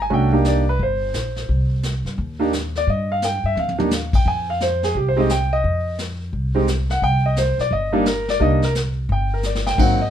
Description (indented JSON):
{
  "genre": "jazz piano trio",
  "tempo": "174 BPM",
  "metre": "4/4",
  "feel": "swing 64% on 8ths",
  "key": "C minor",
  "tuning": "A4 = 440 Hz",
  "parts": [
    { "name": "clear concert grand piano", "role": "melody", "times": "0.0-10.1 s", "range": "Gb3 to Ab5", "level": "-20 LUFS", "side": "right 1 dB", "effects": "none" },
    { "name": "upright bass", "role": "bass", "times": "0.0-10.1 s", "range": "G1 to G2", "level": "-22 LUFS", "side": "equal", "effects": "none" },
    { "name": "vintage brush drum kit", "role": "drums", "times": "0.1-10.1 s", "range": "brushed snare drum, crash cymbal, hi-hat, kick drum, snare drum, toms", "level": "-25 LUFS", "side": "left 2 dB", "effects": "none" }
  ],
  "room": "light reverb",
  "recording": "minimal, uncompressed stereo recording",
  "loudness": "-18 LUFS",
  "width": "side -10 dB against mid",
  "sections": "0.0-10.1 A section",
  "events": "drum fill 3.6-3.9, 9.4-9.8",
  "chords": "0.0 Cm; 4.3 F7(no3); 7.0 Cm7"
}